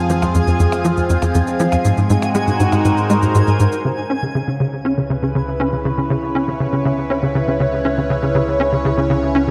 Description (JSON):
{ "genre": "ambient, sequencer-driven space music", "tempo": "120 BPM", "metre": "4/4", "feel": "straight", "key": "C# minor from 3.8 s", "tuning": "A4 = 440 Hz", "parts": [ { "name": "phased analog pad", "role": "sustained chords", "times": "0.0-9.5 s", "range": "C#3 to F5", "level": "-22 LUFS", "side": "equal", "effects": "phaser, chorus" }, { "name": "analog drone", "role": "bass", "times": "0.0-9.5 s", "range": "C#2 to Ab2", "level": "-29 LUFS", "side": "equal", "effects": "chorus" }, { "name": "twinkling granular texture", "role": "texture", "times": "0.0-3.9 s", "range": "Ab5", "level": "-32 LUFS", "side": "equal", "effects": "built-in reverb" }, { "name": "tight sequencer bass", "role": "riff", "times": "0.1-9.5 s", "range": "F2 to C#4", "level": "-20 LUFS", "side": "equal", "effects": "ensemble chorus, analog delay" }, { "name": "shaker and percussion blips", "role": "percussion", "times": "0.1-3.8 s", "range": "none", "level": "-33 LUFS", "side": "equal", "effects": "analog delay" } ], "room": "wet plate reverb, RT60 2.8 s", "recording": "none", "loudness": "-17 LUFS", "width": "mono", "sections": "0.0-3.8 A section; 3.8-9.5 B section", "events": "none", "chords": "0.0 Fm; 1.8 Ab7; 3.8 C#m7" }